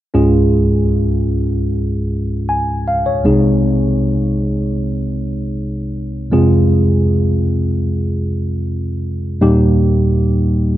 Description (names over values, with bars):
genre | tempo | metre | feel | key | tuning
pop | 78 BPM | 4/4 | straight | unclear | A4 = 438 Hz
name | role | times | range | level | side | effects
tine electric piano | accompaniment | 0.1-10.8 s | C2 to Ab5 | -14 LUFS | equal | overdrive, wide subtle chorus
room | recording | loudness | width
light reverb | dry, close 1970s-style studio recording | -14 LUFS | side -14 dB against mid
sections
0.1-10.8 A section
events
none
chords
0.1 Db; 3.3 Ab/C; 6.3 Fm; 9.4 Eb